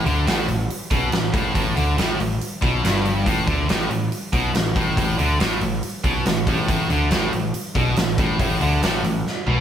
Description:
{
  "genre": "hard rock",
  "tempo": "140 BPM",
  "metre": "4/4",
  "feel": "straight",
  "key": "unclear",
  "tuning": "A4 = 439 Hz",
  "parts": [
    { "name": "distorted electric guitar", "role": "riff", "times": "0.0-9.6 s", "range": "G2 to D3", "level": "-25 LUFS", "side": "left 5 dB", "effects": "distortion" },
    { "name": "heavy high-gain guitar", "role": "riff", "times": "0.0-9.6 s", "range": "G2 to D3", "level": "-26 LUFS", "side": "right 7 dB", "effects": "distortion" },
    { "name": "growling picked electric bass", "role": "bass", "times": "0.0-9.6 s", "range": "G1 to D2", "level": "-24 LUFS", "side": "equal", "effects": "overdrive" },
    { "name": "huge arena drum kit", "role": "drums", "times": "0.1-9.6 s", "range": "hi-hat, kick drum, snare drum, toms", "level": "-23 LUFS", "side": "equal", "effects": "none" }
  ],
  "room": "light reverb",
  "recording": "band playing live in one room",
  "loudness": "-18 LUFS",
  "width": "side -9 dB against mid",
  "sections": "0.0-9.6 A section",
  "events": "drum fill 9.3-9.6",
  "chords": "0.0 Gadd9"
}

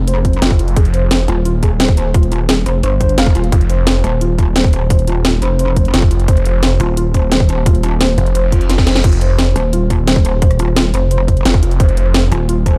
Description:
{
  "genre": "dark technical drum and bass",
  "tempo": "174 BPM",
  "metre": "4/4",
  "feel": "straight",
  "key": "unclear",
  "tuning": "A4 = 440 Hz",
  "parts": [
    { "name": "pulsing pluck wobble bass", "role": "bass", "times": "0.0-12.8 s", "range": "Eb1 to G1", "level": "-17 LUFS", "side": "equal", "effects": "chorus, tube saturation" },
    { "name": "felt-muted upright piano", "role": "arpeggios", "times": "0.1-12.8 s", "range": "F4 to F5", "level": "-23 LUFS", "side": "equal", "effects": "sidechain pumping, low-pass filter, tape echo" },
    { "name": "drum and bass drum kit", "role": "drums", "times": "0.1-12.7 s", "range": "crash cymbal, hi-hat, rim click, snare drum", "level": "-20 LUFS", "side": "equal", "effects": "overdrive, small room ambience" },
    { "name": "electronic kick drum", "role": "drums", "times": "0.2-12.7 s", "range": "none", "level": "-14 LUFS", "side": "equal", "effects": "overdrive, small room ambience" },
    { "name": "snarling distorted saw bass", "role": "bass", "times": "0.4-1.3, 3.5-12.3 s", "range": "F1", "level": "-16 LUFS", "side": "equal", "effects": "distortion, sidechain pumping" },
    { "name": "reverse cymbal", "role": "sound effects", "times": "8.5-9.0 s", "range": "none", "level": "-33 LUFS", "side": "equal", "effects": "none" }
  ],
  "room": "digital ambience",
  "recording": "dark, warm production",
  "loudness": "-13 LUFS",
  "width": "mono",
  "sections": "0.0-12.8 A section",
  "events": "drum fill 8.7-9.0",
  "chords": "0.0 F5"
}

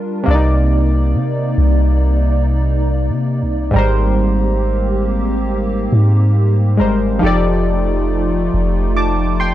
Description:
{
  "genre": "R&B",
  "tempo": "69 BPM",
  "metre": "4/4",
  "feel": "straight",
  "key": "C minor",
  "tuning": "A4 = 440 Hz",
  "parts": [
    { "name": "warm analog keys", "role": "accompaniment", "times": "0.0-9.5 s", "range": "Ab2 to D6", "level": "-18 LUFS", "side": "equal", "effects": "chorus" },
    { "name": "hollow soft pad", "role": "sustained chords", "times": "0.0-9.5 s", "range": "C3 to D5", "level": "-23 LUFS", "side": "equal", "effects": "ensemble chorus" },
    { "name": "soft 808-style bass", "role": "bass", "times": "0.3-9.5 s", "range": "F1 to C3", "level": "-15 LUFS", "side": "equal", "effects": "none" }
  ],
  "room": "digital ambience",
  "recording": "dry, gritty hardware recording",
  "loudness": "-13 LUFS",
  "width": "side -13 dB against mid",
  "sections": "0.3-9.5 A section",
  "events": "none",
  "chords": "0.3 Cm9; 3.7 Abmaj9; 7.2 F13"
}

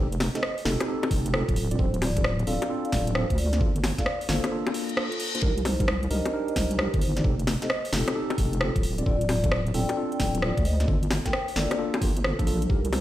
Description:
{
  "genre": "UK garage, two-step garage",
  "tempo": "132 BPM",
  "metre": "4/4",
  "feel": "swing 66% on 16ths",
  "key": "unclear",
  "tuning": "A4 = 440 Hz",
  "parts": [
    { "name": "mellow tine electric piano", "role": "stabs", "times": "0.0-12.8 s", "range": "Bb3 to D5", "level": "-32 LUFS", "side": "equal", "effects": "slow stereo tremolo, ping-pong delay" },
    { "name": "deep soft wobble bass", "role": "bass", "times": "0.0-13.0 s", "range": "D1 to D2", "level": "-26 LUFS", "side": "equal", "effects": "chorus" },
    { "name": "garage drum kit", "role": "drums", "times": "0.1-13.0 s", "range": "bongos, hi-hat, rim click, snare drum", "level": "-29 LUFS", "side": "left 1 dB", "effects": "none" },
    { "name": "vibraphone with soft mallets", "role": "melody", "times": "0.4-13.0 s", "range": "Eb4 to G5", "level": "-32 LUFS", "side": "equal", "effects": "vintage 12-bit sampler grit, ping-pong delay" },
    { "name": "electronic kick drum", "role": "drums", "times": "1.1-12.8 s", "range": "none", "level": "-26 LUFS", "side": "equal", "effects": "none" },
    { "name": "reverse cymbal", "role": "sound effects", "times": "4.7-5.4 s", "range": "none", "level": "-33 LUFS", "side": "left 4 dB", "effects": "none" }
  ],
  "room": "light reverb",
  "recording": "played on a big sound system in a bare room, stone room reverb",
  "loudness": "-23 LUFS",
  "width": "side -14 dB against mid",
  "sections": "0.0-13.0 A section",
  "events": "break 4.5-5.4; reverse cymbal 4.7-5.4",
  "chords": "0.0 F9; 1.6 Dm7; 3.6 Gm7; 5.4 Cm7; 7.2 F9; 8.8 Dm7; 10.9 Gm7"
}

